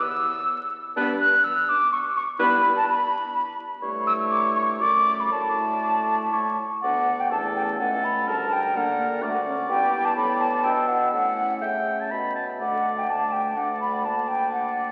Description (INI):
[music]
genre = quick classical-period movement for wind quintet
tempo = 125 BPM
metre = 3/4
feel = rubato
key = D major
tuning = A4 = 438 Hz
[part]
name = mellow hollow concert flute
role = melody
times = 0.0-14.9 s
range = E5 to F#6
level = -25 LUFS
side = equal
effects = none
[part]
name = warm oboe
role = second line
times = 1.0-14.9 s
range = A4 to B5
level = -30 LUFS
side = equal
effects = none
[part]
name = mellow French horn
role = accompaniment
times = 1.0-14.9 s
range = G3 to C#4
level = -38 LUFS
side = equal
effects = none
[part]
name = warm clarinet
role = accompaniment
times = 1.0-14.9 s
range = C#4 to F#4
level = -40 LUFS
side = equal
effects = none
[part]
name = mellow bassoon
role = bass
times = 1.0-14.9 s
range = C#2 to D3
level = -36 LUFS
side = equal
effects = none
[sound]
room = wet church reverb, RT60 2.6 s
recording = very old 78 rpm record, vinyl crackle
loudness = -24 LUFS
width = mono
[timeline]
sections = 0.0-6.8 A section; 6.8-14.9 B section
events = none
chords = 0.0 N.C.; 1.0 G; 2.4 Em/G; 3.8 A7/G; 4.8 D/F#; 5.3 D/A; 6.3 A; 6.8 D5; 8.3 Gm/D; 9.2 D; 9.7 Em/G; 11.1 A; 12.6 D5; 14.1 Daug